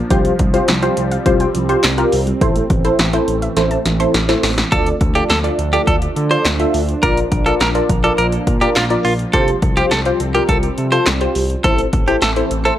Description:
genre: synth-pop.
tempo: 104 BPM.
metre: 4/4.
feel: straight.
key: D minor.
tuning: A4 = 444 Hz.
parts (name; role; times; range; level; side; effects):
phased analog pad; sustained chords; 0.0-12.8 s; E3 to D4; -24 LUFS; right 1 dB; phaser, chorus.
soft round pluck; arpeggios; 0.0-4.7 s; E3 to F6; -25 LUFS; right 2 dB; chorus, analog delay.
smooth synth bass; bass; 0.0-12.7 s; A1 to D3; -20 LUFS; equal; none.
funky polysynth comp; accompaniment; 0.1-12.8 s; E4 to E5; -18 LUFS; left 1 dB; chorus.
punchy analog drum machine; drums; 0.1-12.8 s; handclaps, hi-hat, kick drum, snare drum; -18 LUFS; equal; none.
direct-recorded clean electric guitar; second line; 4.7-12.7 s; F4 to C5; -19 LUFS; right 1 dB; analog delay.
room: little or no reverb.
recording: dry, gritty hardware recording.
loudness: -13 LUFS.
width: side -12 dB against mid.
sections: 0.0-4.7 A section; 4.7-12.8 B section.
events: drum fill 3.6-4.7.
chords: 0.1 Csus4; 2.4 Am; 4.7 Dm; 7.0 Bb; 9.3 Csus4; 11.6 Am.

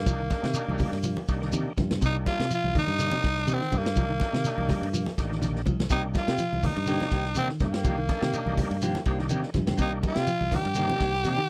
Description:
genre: afrobeat.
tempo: 124 BPM.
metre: 4/4.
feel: swing 54% on 16ths.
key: C minor.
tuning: A4 = 435 Hz.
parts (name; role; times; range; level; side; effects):
raspy tenor saxophone; melody; 0.0-11.5 s; Bb3 to G4; -32 LUFS; equal; none.
fingered electric bass; bass; 0.0-11.4 s; A1 to C3; -32 LUFS; equal; none.
overdriven tonewheel organ; accompaniment; 0.1-11.4 s; Bb3 to Bb4; -38 LUFS; equal; slow rotary speaker, chorus vibrato.
clean electric guitar; arpeggios; 0.1-11.5 s; C3 to G3; -36 LUFS; equal; none.
vintage drum kit; drums; 0.1-11.4 s; hi-hat, kick drum, ride cymbal, snare drum; -33 LUFS; equal; none.
congas; percussion; 0.1-11.4 s; none; -35 LUFS; equal; none.
shekere; percussion; 0.1-11.4 s; none; -37 LUFS; equal; none.
semi-hollow electric guitar; stabs; 5.9-11.4 s; Eb3 to G4; -37 LUFS; equal; none.
room: little or no reverb.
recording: dry, close 1970s-style studio recording.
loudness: -27 LUFS.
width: mono.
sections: 0.0-11.5 A section.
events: none.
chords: 0.0 Cm7.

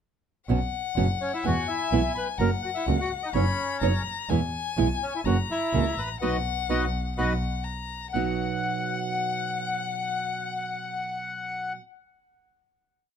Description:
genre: tango.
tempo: 126 BPM.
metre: 4/4.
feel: rubato.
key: B major.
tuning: A4 = 440 Hz.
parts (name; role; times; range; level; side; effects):
warm violin; second line; 0.5-11.7 s; F#5 to B5; -32 LUFS; left 10 dB; none.
nylon-string guitar; accompaniment; 0.5-11.8 s; B2 to C#5; -29 LUFS; right 8 dB; none.
rich double bass; bass; 0.5-8.3 s; F#1 to E2; -28 LUFS; equal; none.
bandoneon; melody; 1.2-11.7 s; C#4 to B5; -30 LUFS; left 1 dB; plate reverb.
room: light reverb.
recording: close, detailed microphones.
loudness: -25 LUFS.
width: side -8 dB against mid.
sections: 0.5-8.1 A section; 8.1-11.9 final chord.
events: band accent 6.2-8.1.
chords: 0.5 Bsus2; 1.4 E; 2.4 F#; 3.3 Badd9/F#; 4.3 E; 5.3 F#7; 6.2 B; 7.7 N.C.; 8.1 B.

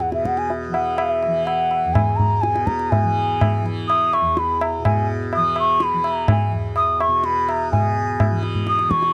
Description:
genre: indian classical, Hindustani.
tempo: 125 BPM.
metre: 5/4.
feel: straight.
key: E raga yaman.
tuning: A4 = 440 Hz.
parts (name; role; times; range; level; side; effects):
mellow bansuri; melody; 0.0-9.1 s; E5 to D#6; -22 LUFS; equal; none.
tanpura; drone; 0.0-9.1 s; E2 to E3; -29 LUFS; equal; none.
tabla; percussion; 0.0-9.1 s; none; -24 LUFS; equal; none.
room: little or no reverb.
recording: dry, close 1970s-style studio recording.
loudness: -20 LUFS.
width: mono.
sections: 0.0-7.7 A section; 7.7-9.1 B section.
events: none.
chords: none.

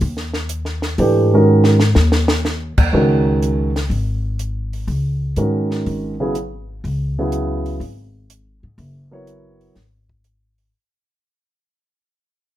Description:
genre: modal jazz.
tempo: 123 BPM.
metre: 4/4.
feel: swing 69% on 8ths.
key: C# dorian.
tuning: A4 = 443 Hz.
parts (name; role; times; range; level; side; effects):
upright bass; bass; 0.0-10.7 s; F#1 to G#2; -19 LUFS; left 1 dB; none.
compact cocktail drum kit; drums; 0.0-10.7 s; crash cymbal, hi-hat, kick drum, snare drum; -21 LUFS; equal; none.
dark concert grand piano; accompaniment; 1.0-9.7 s; C#3 to C#5; -16 LUFS; right 2 dB; plate reverb.
room: moderate studio reverb, RT60 0.6 s.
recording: rough home demo mix.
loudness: -15 LUFS.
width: side -13 dB against mid.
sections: 0.0-2.9 A section; 2.9-10.7 B section.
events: drum fill 1.5-2.5; fade-out 2.9-10.7.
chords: 0.0 G#9sus4; 2.9 C#9sus4.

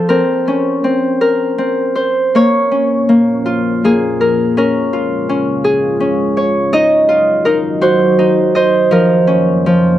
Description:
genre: children's music, lullaby.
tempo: 54 BPM (dotted quarters).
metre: 6/8.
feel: rubato.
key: Bb minor.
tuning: A4 = 440 Hz.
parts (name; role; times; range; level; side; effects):
Celtic harp; melody; 0.0-10.0 s; F3 to Eb5; -11 LUFS; equal; tape echo.
deep dark ambient pad; sustained chords; 3.2-10.0 s; F2 to F4; -21 LUFS; right 1 dB; chorus, built-in reverb.
room: studio ambience.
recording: dry, close 1970s-style studio recording.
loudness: -11 LUFS.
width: side -12 dB against mid.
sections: 0.0-2.4 A section; 2.4-10.0 A section.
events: none.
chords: 0.1 Bbmadd9; 2.4 Bbm; 4.6 Db; 6.7 Ebmadd9; 8.9 Bbm/F.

